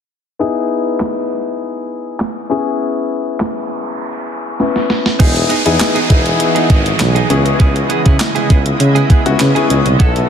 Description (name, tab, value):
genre	dance-pop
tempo	100 BPM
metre	4/4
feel	straight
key	E major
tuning	A4 = 440 Hz
part	warm concert grand piano	accompaniment	0.4-10.3 s	B3 to B4	-17 LUFS	left 5 dB	sidechain pumping
part	crisp 8-bit digital drum machine	drums	1.0-10.3 s	crash cymbal, handclaps, hi-hat, kick drum, snare drum	-14 LUFS	right 1 dB	overdrive
part	noise sweep and downlifter	sound effects	3.4-10.0 s	none	-24 LUFS	right 1 dB	none
part	shimmering ambient pad	sustained chords	5.9-10.3 s	C#3 to D#5	-19 LUFS	right 1 dB	chorus, built-in reverb, sidechain pumping
part	direct-recorded clean electric guitar	riff	5.2-10.2 s	B3 to A4	-21 LUFS	right 8 dB	lush chorus
part	warm tuba	bass	5.2-10.2 s	E1 to C#3	-15 LUFS	equal	sidechain pumping
room	light reverb, digital ambience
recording	dense, heavily limited modern master, low-pass filter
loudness	-12 LUFS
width	side -8 dB against mid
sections	0.4-5.2 A section; 5.2-10.3 B section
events	filter sweep 0.4-5.2; noise sweep 3.4-5.2; drum fill 4.6-5.2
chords	0.4 Emaj7; 2.5 C#m7; 5.2 Emaj7; 7.3 C#m7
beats	| 0.40 1.00 1.60 2.20 | 2.80 3.40 4.00 4.60 | 5.20 5.80 6.40 7.00 | 7.60 8.20 8.80 9.40 | 10.00